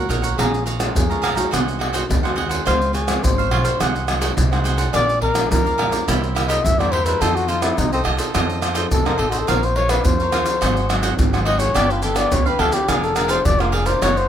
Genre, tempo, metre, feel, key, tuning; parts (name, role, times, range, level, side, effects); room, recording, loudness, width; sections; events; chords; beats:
samba and choro; 106 BPM; 4/4; straight; A4 = 439 Hz
cavaquinho; accompaniment; 0.0-14.3 s; D4 to Bb5; -25 LUFS; right 6 dB
nylon-string guitar; accompaniment; 0.0-14.3 s; F2 to C5; -28 LUFS; left 3 dB
upright bass; bass; 0.0-14.3 s; F1 to F2; -23 LUFS; equal
maracas, pandeiro, surdo and tamborim; percussion; 0.1-14.3 s; -21 LUFS; right 1 dB
breathy trumpet; melody; 0.4-14.3 s; C4 to E5; -21 LUFS; left 3 dB
little or no reverb; close, detailed microphones; -16 LUFS; side -9 dB against mid
0.4-14.3 A section
trumpet solo 0.4-14.3
0.4 Bbm7; 1.5 Ab7/C; 2.7 Dbmaj7; 3.8 Ab7/C; 4.9 Bb7; 6.1 C7; 7.2 F7; 9.5 Bbmadd9; 10.6 Ab7; 11.8 G7; 12.9 Bb7/F
| 0.39 0.96 1.53 2.10 | 2.67 3.23 3.80 4.37 | 4.94 5.51 6.08 6.65 | 7.21 7.78 8.35 8.92 | 9.49 10.05 10.62 11.19 | 11.76 12.32 12.89 13.46 | 14.02